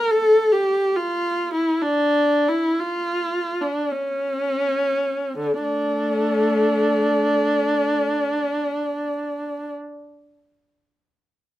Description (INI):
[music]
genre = classical, free, expressive piece for unaccompanied viola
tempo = 34-76 BPM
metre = 3/4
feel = rubato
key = D minor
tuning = A4 = 439 Hz
[part]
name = rich viola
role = solo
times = 0.0-9.7 s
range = D3 to Bb4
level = -19 LUFS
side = equal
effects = none
[sound]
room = light reverb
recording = minimal, uncompressed stereo recording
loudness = -19 LUFS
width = side -14 dB against mid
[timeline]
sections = 0.0-5.4 A section; 5.4-9.0 B section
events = slowing down 0.0-5.4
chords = none